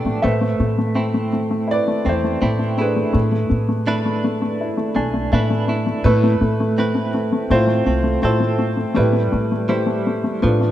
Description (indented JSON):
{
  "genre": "acoustic folk-pop ballad",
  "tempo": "82 BPM",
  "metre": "4/4",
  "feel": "straight",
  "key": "A minor",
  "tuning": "A4 = 440 Hz",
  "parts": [
    { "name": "warm upright piano", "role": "melody", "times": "0.0-10.7 s", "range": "A3 to G#5", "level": "-19 LUFS", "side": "left 1 dB", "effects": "none" },
    { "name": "direct-recorded clean electric guitar", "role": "arpeggios", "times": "0.0-10.7 s", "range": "F3 to B4", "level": "-26 LUFS", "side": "right 3 dB", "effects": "tremolo" },
    { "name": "upright bass", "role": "bass", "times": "0.0-10.7 s", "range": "B1 to A2", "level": "-22 LUFS", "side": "equal", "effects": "none" }
  ],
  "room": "moderate lush hall reverb, RT60 2.9 s",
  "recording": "rough home demo mix",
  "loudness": "-16 LUFS",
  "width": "side -12 dB against mid",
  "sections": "0.0-10.7 A section",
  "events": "upright piano fill 4.6-6.0",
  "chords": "0.2 Amadd9; 3.1 E7/A; 6.0 Amadd9; 7.5 Fmaj7; 9.0 Cmaj7/A"
}